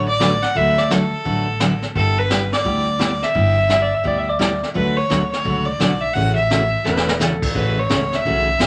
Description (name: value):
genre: country, western swing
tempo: 172 BPM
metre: 4/4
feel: swing 63% on 8ths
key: D major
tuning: A4 = 440 Hz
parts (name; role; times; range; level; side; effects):
- clear fiddle; melody; 0.0-8.7 s; A4 to F#5; -22 LUFS; equal; none
- picked steel-string acoustic guitar; accompaniment; 0.0-8.7 s; C#3 to B4; -24 LUFS; equal; none
- upright bass; bass; 0.0-8.7 s; E1 to D2; -26 LUFS; equal; none
- jazz brush drum kit; drums; 0.2-8.7 s; brushed snare drum, crash cymbal, hi-hat, kick drum, snare drum; -26 LUFS; equal; none
- clean lap steel guitar; second line; 3.7-4.7, 6.9-7.5 s; A4 to E5; -24 LUFS; equal; none
room: wet small room reverb, RT60 0.5 s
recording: none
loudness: -18 LUFS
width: mono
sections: 0.0-8.7 A section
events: drum fill 6.9-7.2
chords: 0.0 D6; 2.0 G6; 4.8 D6; 6.2 A6